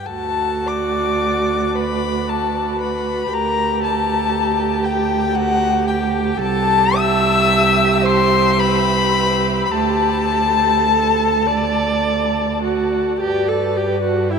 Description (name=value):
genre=classical, slow romantic movement for string quartet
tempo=49-59 BPM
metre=3/4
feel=rubato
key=D major, G major from 6.4 s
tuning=A4 = 441 Hz
part: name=muted violin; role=melody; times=0.0-14.4 s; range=D5 to E6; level=-19 LUFS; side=left 6 dB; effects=none
part: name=muted violin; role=second line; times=0.0-14.4 s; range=F#4 to E5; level=-24 LUFS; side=left 1 dB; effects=none
part: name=muted viola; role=accompaniment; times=0.1-14.4 s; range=E4 to D5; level=-22 LUFS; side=right 3 dB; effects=none
part: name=muted cello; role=bass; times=0.1-14.4 s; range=C2 to G2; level=-22 LUFS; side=right 6 dB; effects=none
room=wet huge ambient reverb, RT60 9.2 s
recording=in a vast, echoing space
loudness=-15 LUFS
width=side -6 dB against mid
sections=0.1-13.2 A section; 13.2-14.4 B section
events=none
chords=0.1 D; 3.3 G5/D; 6.4 Cmaj7; 9.7 Dsus4; 12.1 D; 13.2 G